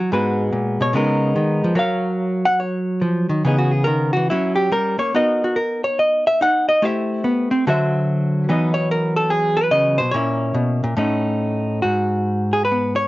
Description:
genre	solo jazz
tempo	143 BPM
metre	4/4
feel	swing 67% on 8ths, rubato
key	G# minor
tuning	A4 = 437 Hz
part	hollow-body jazz guitar	solo	0.0-13.1 s	G#2 to F#5	-17 LUFS	equal	none
room	light reverb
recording	worn, warbling old tape, cassette tape, warbly pitch drift, nothing above 7.6 kHz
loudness	-17 LUFS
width	side -18 dB against mid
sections	0.0-11.8 A section; 11.8-13.1 B section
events	hollow-body jazz guitar solo 0.0-11.8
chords	0.1 G#m9; 0.9 C#13; 1.8 F#maj7; 3.4 C#m9; 4.3 F#; 5.1 Bmaj7; 6.8 Am7; 7.7 D9; 8.5 Esus2; 10.1 A#dim; 11.0 A; 11.8 G#m7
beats	| 0.11 0.53 0.94 1.34 | 1.75 2.16 2.58 3.00 | 3.42 3.85 4.27 4.70 | 5.13 5.56 5.99 6.41 | 6.83 7.24 7.66 8.07 | 8.48 8.89 9.30 9.72 | 10.13 10.54 10.97 11.40 | 11.83 12.25 12.68

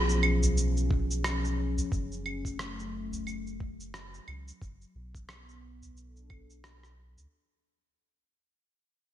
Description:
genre	organic downtempo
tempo	89 BPM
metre	4/4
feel	swing 57% on 16ths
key	unclear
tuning	A4 = 440 Hz
part	warm analog pad	sustained chords	0.0-7.3 s	E#3 to A4	-35 LUFS	left 2 dB	chorus, sidechain pumping
part	round analog bass	bass	0.0-7.3 s	F#1 to C#2	-32 LUFS	equal	tube saturation, sidechain pumping
part	electronic shaker, claves and rim click	drums	0.1-7.3 s	none	-34 LUFS	right 2 dB	gated reverb
part	udu	percussion	0.4-7.3 s	none	-35 LUFS	right 1 dB	none
part	electronic kick drum	drums	0.9-6.5 s	none	-33 LUFS	equal	none
room	moderate lush hall reverb, RT60 2.0 s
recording	bright 1980s-style digital production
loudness	-28 LUFS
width	side -12 dB against mid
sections	0.0-7.3 A section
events	fade-out 0.0-7.3; filter sweep on analog synth bass 0.0-7.3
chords	0.0 C#7; 1.9 F#madd9; 4.6 Bm7/F#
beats	0.57 1.24 | 1.92 2.59 3.27 3.94 | 4.61 5.29 5.96 6.64

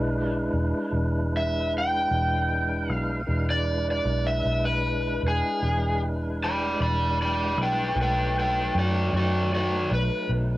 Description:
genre	slow blues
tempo	51 BPM (dotted quarters)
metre	12/8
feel	straight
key	E mixolydian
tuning	A4 = 435 Hz
part	tonewheel organ	sustained chords	0.0-10.6 s	F#3 to B4	-30 LUFS	equal	slow rotary speaker, cassette tape
part	vintage muted fingered electric bass	bass	0.0-10.6 s	E1 to F#2	-27 LUFS	equal	none
part	overdriven slide guitar	melody	1.4-10.3 s	F#4 to B5	-26 LUFS	equal	cassette tape
room	light reverb, digital ambience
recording	home recording on cassette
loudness	-23 LUFS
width	side -17 dB against mid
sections	0.0-10.6 A section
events	electric slide guitar solo 0.0-10.6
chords	0.0 E7; 8.0 B7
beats	0.92 2.10 | 3.27 4.44 5.61 6.78 | 7.95 9.12 10.29

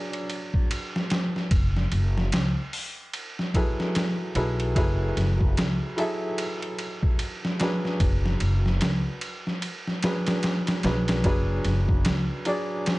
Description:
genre	trip hop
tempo	74 BPM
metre	4/4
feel	swing 60% on 16ths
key	F# minor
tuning	A4 = 435 Hz
part	clear upright piano	accompaniment	0.0-13.0 s	F#3 to E5	-30 LUFS	equal	tremolo, tape echo
part	trip hop sampler-style drum kit	drums	0.1-13.0 s	hi-hat, kick drum, ride cymbal, snare drum	-26 LUFS	equal	none
part	upright bass	bass	1.5-12.3 s	F#1 to C#2	-25 LUFS	equal	none
room	digital ambience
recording	nothing above 10.9 kHz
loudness	-23 LUFS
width	side -20 dB against mid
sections	0.0-13.0 A section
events	none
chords	0.0 Bm6/F#; 1.5 F#m11; 8.0 Bm6/F#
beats	0.71 | 1.52 2.33 3.14 3.95 | 4.76 5.57 6.38 7.19 | 8.00 8.81 9.62 10.44 | 11.25 12.06 12.87

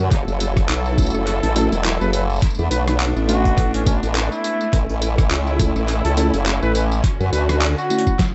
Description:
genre	glitch hop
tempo	104 BPM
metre	4/4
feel	swing 57% on 16ths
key	F# minor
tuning	A4 = 442 Hz
part	rich studio string section	sustained chords	0.0-8.3 s	C#3 to A4	-29 LUFS	equal	sidechain pumping
part	formant-sweep wobble bass	bass	0.0-7.8 s	E1 to F#2	-22 LUFS	equal	chorus, tube saturation
part	boom bap sampler-style drum kit	drums	0.1-8.3 s	handclaps, hi-hat, rim click, snare drum, tambourine	-28 LUFS	equal	overdrive, analog delay
part	electronic kick drum	drums	0.1-8.3 s	none	-21 LUFS	equal	overdrive
part	mellow tine electric piano	stabs	1.0-8.1 s	A3 to A4	-27 LUFS	equal	sidechain pumping, analog delay
part	mellow trumpet	melody	1.4-8.3 s	C#4 to B4	-29 LUFS	equal	analog delay
room	light reverb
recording	echo-heavy mix, vinyl crackle, nothing above 8.0 kHz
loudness	-19 LUFS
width	mono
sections	0.0-8.3 A section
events	drum fill 8.2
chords	0.1 F#m7; 2.4 Bm7; 4.7 A; 7.0 Dmaj7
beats	| 0.11 0.69 1.27 1.84 | 2.42 3.00 3.58 4.15 | 4.73 5.31 5.88 6.46 | 7.04 7.61 8.19

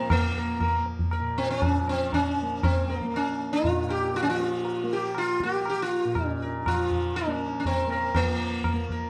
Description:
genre	indian classical, Hindustani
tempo	119 BPM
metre	4/4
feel	straight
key	Bb raga shivaranjani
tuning	A4 = 440 Hz
part	sitar	melody	0.0-9.1 s	Bb3 to Bb4	-29 LUFS	equal	none
part	tanpura	drone	0.0-9.1 s	Bb2 to Bb3	-37 LUFS	equal	none
part	tabla	percussion	0.1-9.1 s	none	-31 LUFS	equal	none
room	moderate recital hall reverb, RT60 1.5 s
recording	dark, warm production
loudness	-27 LUFS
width	mono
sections	0.0-8.2 A section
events	none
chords	none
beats	| 0.11 0.62 1.12 1.63 | 2.13 2.64 3.15 3.65 | 4.15 4.65 5.16 5.66 | 6.16 6.66 7.16 7.66 | 8.15 8.65

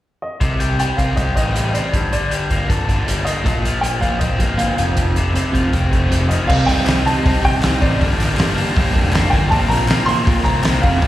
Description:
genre	indie rock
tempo	158 BPM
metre	4/4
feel	straight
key	C dorian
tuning	A4 = 440 Hz
part	warm upright piano	melody	0.2-11.1 s	D5 to C6	-23 LUFS	equal	slapback echo
part	biting overdriven guitar	riff	0.4-11.1 s	F2 to A4	-21 LUFS	left 3 dB	none
part	fuzz picked electric bass	bass	0.4-11.1 s	F1 to C3	-20 LUFS	equal	overdrive
part	loose indie drum kit	drums	0.4-11.1 s	crash cymbal, hi-hat, kick drum, snare drum	-19 LUFS	equal	none
part	twelve-string electric guitar	riff	3.4-11.1 s	F2 to Eb4	-23 LUFS	right 3 dB	wide subtle chorus
part	group handclap	percussion	6.9-10.7 s	none	-33 LUFS	right 1 dB	none
room	light reverb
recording	live gig heard through the venue's PA, recital hall reverb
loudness	-14 LUFS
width	side -14 dB against mid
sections	0.4-6.5 A section; 6.5-11.1 B section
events	none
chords	0.4 Cm; 1.9 Gmadd9; 3.5 Bbsus2; 4.8 F; 6.5 Cm; 8.0 Gm; 9.5 Bbsus2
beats	0.03 | 0.41 0.79 1.17 1.55 | 1.93 2.31 2.69 3.07 | 3.45 3.83 4.21 4.59 | 4.97 5.35 5.73 6.11 | 6.49 6.87 7.24 7.62 | 8.00 8.38 8.76 9.13 | 9.51 9.89 10.26 10.64 | 11.02

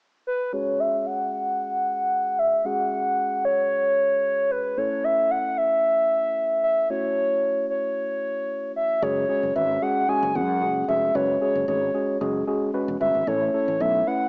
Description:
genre	dance-pop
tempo	113 BPM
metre	4/4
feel	straight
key	F# minor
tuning	A4 = 440 Hz
part	hollow clarinet-like synth lead	melody	0.3-14.3 s	B4 to G#5	-21 LUFS	equal	chorus, low-pass filter, cassette tape
part	mellow tine electric piano	accompaniment	0.5-14.3 s	G#3 to B4	-28 LUFS	equal	low-pass filter
part	fretless electric bass	bass	9.0-14.0 s	E1 to F#2	-31 LUFS	equal	none
room	moderate spring reverb, RT60 1.5 s, digital ambience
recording	home recording on cassette, small speaker sound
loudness	-21 LUFS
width	side -33 dB against mid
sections	0.5-9.0 A section; 9.0-14.3 B section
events	filter sweep 0.5-9.0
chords	0.0 N.C.; 0.5 F#sus2; 4.8 A; 9.0 F#sus2; 13.3 A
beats	0.00 | 0.53 1.06 1.59 2.12 | 2.65 3.18 3.71 4.25 | 4.78 5.31 5.84 6.37 | 6.90 7.43 7.96 8.49 | 9.03 9.56 10.09 10.62 | 11.15 11.68 12.21 12.74 | 13.27 13.80

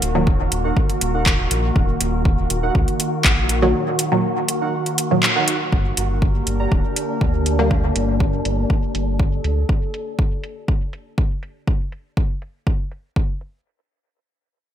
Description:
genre	dub techno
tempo	121 BPM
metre	4/4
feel	straight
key	G harmonic minor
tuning	A4 = 435 Hz
part	warbly tape-like pad	sustained chords	0.0-11.6 s	D3 to Bb4	-26 LUFS	left 1 dB	chorus, built-in reverb, sidechain pumping
part	filtered dub chord stab	stabs	0.0-0.3, 3.6-8.0 s	Bb2 to Bb3	-22 LUFS	right 1 dB	chorus, phaser, sidechain pumping, dub echo
part	round analog bass	bass	0.0-9.6 s	D1 to D2	-22 LUFS	equal	sidechain pumping
part	deep house drum kit	drums	0.0-13.5 s	handclaps, hi-hat	-20 LUFS	equal	overdrive, low-pass filter on hats, low-pass filter on snare, gated reverb
part	wind-like tuned noise texture	texture	0.0-9.7 s	D4 to Gb4	-29 LUFS	equal	built-in reverb, sidechain pumping
part	electronic kick drum	drums	0.3-13.3 s	none	-19 LUFS	equal	none
part	warbly lo-fi synth keys	riff	0.6-6.7 s	Eb4 to Bb5	-28 LUFS	right 5 dB	chorus, sidechain pumping, low-pass filter, dub echo
room	light reverb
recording	bright 1980s-style digital production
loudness	-18 LUFS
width	side -10 dB against mid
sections	0.0-5.7 A section; 5.7-13.7 B section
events	filter sweep on synth stab 0.0-5.7; band accent 5.2; filter sweep on drum 5.7-13.7; filter sweep on ambient pad 5.7-11.7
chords	0.0 Ebm; 5.7 Gm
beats	0.27 0.77 1.26 | 1.76 2.25 2.75 3.25 | 3.74 4.24 4.73 5.23 | 5.72 6.22 6.72 7.21 | 7.71 8.20 8.70 9.20 | 9.69 10.19 10.68 11.18 | 11.68 12.17 12.67 13.16

